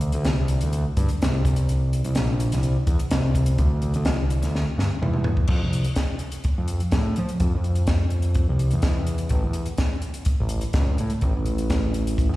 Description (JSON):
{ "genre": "math rock and midwest emo", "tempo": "126 BPM", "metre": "4/4", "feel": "straight", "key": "unclear", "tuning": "A4 = 441 Hz", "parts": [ { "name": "growling picked electric bass", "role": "bass", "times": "0.0-12.4 s", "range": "A1 to F3", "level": "-22 LUFS", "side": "equal", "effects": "overdrive" }, { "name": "compact cocktail drum kit", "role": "drums", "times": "0.0-12.4 s", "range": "crash cymbal, hi-hat, kick drum, snare drum, toms", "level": "-24 LUFS", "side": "equal", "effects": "slapback echo" } ], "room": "little or no reverb", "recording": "live gig heard through the venue's PA, recital hall reverb", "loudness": "-20 LUFS", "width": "side -17 dB against mid", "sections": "0.0-5.5 A section; 5.5-12.4 B section", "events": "drum fill 4.6-5.5", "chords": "none", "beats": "0.26 0.74 1.22 | 1.69 2.17 2.65 3.12 | 3.60 4.08 4.55 5.03 | 5.50 5.98 6.46 6.94 | 7.42 7.89 8.37 8.85 | 9.32 9.80 10.28 10.76 | 11.23 11.71 12.19" }